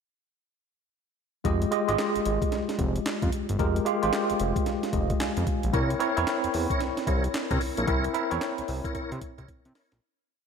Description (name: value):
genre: R&B, new jack swing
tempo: 112 BPM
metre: 4/4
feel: swing 62% on 16ths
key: F minor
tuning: A4 = 440 Hz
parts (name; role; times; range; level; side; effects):
- tine electric piano; accompaniment; 1.4-10.0 s; Ab3 to Ab5; -27 LUFS; right 1 dB; overdrive, fast stereo tremolo, slapback echo
- breakbeat sampler-style drum kit; drums; 1.4-10.0 s; handclaps, hi-hat, kick drum, snare drum; -30 LUFS; equal; none
- fat analog bass; bass; 1.5-10.0 s; F1 to C3; -29 LUFS; equal; none
- tonewheel organ; stabs; 5.7-9.9 s; E4 to Db5; -33 LUFS; left 1 dB; overdrive, chorus vibrato, slow rotary speaker
room: moderate lush hall reverb, RT60 2.0 s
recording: big arena sound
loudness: -24 LUFS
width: side -6 dB against mid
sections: 1.4-10.0 verse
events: tine electric piano fill 4.7-5.7; fade-out 7.9-10.0; drum fill 8.9-10.0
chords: 1.4 Fm9; 5.7 C7b9